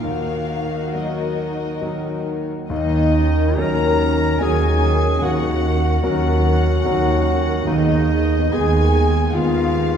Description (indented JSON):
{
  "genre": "cinematic, emotional film score for orchestra",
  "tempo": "66-75 BPM",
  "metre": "3/4",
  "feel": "rubato",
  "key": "Eb minor",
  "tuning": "A4 = 440 Hz",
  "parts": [
    { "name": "warm chamber violin section", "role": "melody", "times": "0.0-10.0 s", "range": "Eb5 to Bb5", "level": "-30 LUFS", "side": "left 5 dB", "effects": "none" },
    { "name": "warm studio violin section", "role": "second line", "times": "0.0-10.0 s", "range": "Gb4 to Bb5", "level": "-27 LUFS", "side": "left 4 dB", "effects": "none" },
    { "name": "bright grand piano", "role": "accompaniment", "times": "0.0-10.0 s", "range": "Eb2 to Bb4", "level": "-25 LUFS", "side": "left 2 dB", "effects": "none" },
    { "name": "dark symphonic viola section", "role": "accompaniment", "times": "0.0-10.0 s", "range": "Bb3 to Bb4", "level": "-28 LUFS", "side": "right 2 dB", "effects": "none" },
    { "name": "warm symphonic cello section", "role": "bass", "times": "0.0-10.0 s", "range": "Eb3", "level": "-24 LUFS", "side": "right 2 dB", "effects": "none" },
    { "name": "warm clarinet", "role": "second line", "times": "2.7-10.0 s", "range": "Eb4 to Bb4", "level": "-22 LUFS", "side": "left 2 dB", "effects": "none" },
    { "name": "rich symphonic double bass section", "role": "bass", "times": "2.7-10.0 s", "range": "Eb2", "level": "-19 LUFS", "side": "right 2 dB", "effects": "none" }
  ],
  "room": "wet scoring stage reverb, RT60 1.6 s",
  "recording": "heard from further back in the room",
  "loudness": "-16 LUFS",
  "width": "side -8 dB against mid",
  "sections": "0.0-2.7 A section; 2.7-10.0 B section",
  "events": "none",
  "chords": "0.0 Ebm; 2.7 Ebm7; 7.7 Abm/Eb"
}